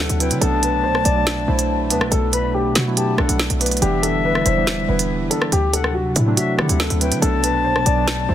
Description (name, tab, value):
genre	hip hop, drill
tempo	141 BPM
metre	4/4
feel	half-time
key	unclear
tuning	A4 = 440 Hz
part	dark concert grand piano	melody	0.0-8.3 s	E4 to D5	-24 LUFS	left 1 dB	ping-pong delay
part	reedy silver concert flute	second line	0.0-8.3 s	E5 to B5	-24 LUFS	left 7 dB	ping-pong delay
part	soft electric-piano-like synth keys	accompaniment	0.0-8.3 s	B2 to E4	-24 LUFS	right 4 dB	chorus
part	dark analog pad	sustained chords	0.0-8.3 s	B2 to E4	-26 LUFS	equal	chorus
part	short 808-style bass	bass	0.0-8.3 s	E1 to D3	-22 LUFS	equal	none
part	drill drum kit	drums	0.1-8.2 s	hi-hat, rim click, snare drum	-22 LUFS	right 1 dB	soft clipping on snare
room	little or no reverb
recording	dense, heavily limited modern master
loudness	-16 LUFS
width	side -11 dB against mid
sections	0.0-8.3 A section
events	none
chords	0.4 Bm7; 3.8 Em7; 5.5 D7; 7.2 Bm7